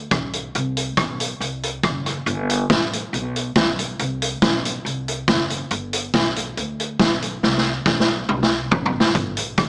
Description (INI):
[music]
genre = ska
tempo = 139 BPM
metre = 4/4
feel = straight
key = G major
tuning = A4 = 440 Hz
[part]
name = upright bass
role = bass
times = 0.0-9.7 s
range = F#1 to D2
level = -26 LUFS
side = equal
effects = none
[part]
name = street-band drum kit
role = drums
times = 0.1-9.7 s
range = hi-hat, kick drum, rim click, snare drum, toms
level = -19 LUFS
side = equal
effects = none
[sound]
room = light reverb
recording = small speaker sound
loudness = -18 LUFS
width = side -35 dB against mid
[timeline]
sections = 0.0-9.1 A section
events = drum fill 7.4-9.1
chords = none